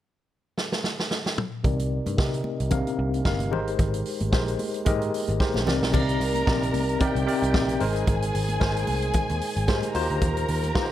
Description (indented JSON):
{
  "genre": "disco",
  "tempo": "112 BPM",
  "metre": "4/4",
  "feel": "swing 56% on 16ths",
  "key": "unclear",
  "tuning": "A4 = 444 Hz",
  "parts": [
    { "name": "vintage drum kit", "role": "drums", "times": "0.6-10.9 s", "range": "crash cymbal, hi-hat, kick drum, snare drum, toms", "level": "-27 LUFS", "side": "right 1 dB", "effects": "none" },
    { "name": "tine electric piano", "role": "accompaniment", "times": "1.6-10.9 s", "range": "C3 to F5", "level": "-27 LUFS", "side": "left 2 dB", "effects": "overdrive, medium stereo tremolo, low-pass filter" },
    { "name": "picked electric bass", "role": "bass", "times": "1.6-10.7 s", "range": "G1 to C3", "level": "-27 LUFS", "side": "equal", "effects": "tube saturation" },
    { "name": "congas", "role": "percussion", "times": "1.6-10.9 s", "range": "none", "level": "-35 LUFS", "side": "left 1 dB", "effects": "none" },
    { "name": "rich studio string section", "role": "second line", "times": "5.9-10.9 s", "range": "G4 to Bb5", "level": "-30 LUFS", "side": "right 2 dB", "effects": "none" }
  ],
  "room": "light reverb, small room ambience",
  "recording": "none",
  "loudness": "-22 LUFS",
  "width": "side -12 dB against mid",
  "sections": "0.0-1.6 A section; 1.6-5.9 B section; 5.9-10.9 C section",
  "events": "drum fill 0.6-1.6, 5.4-5.9; filter sweep on tine electric piano 1.6-5.9",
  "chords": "0.0 N.C.; 1.6 Cm9; 3.5 Abmaj9; 5.7 Cm9; 7.8 Abmaj9; 9.9 Eb6",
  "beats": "0.03 0.57 1.11 | 1.64 2.18 2.72 3.25 | 3.79 4.33 4.86 5.40 | 5.93 6.47 7.01 7.54 | 8.08 8.61 9.15 9.68 | 10.22 10.75"
}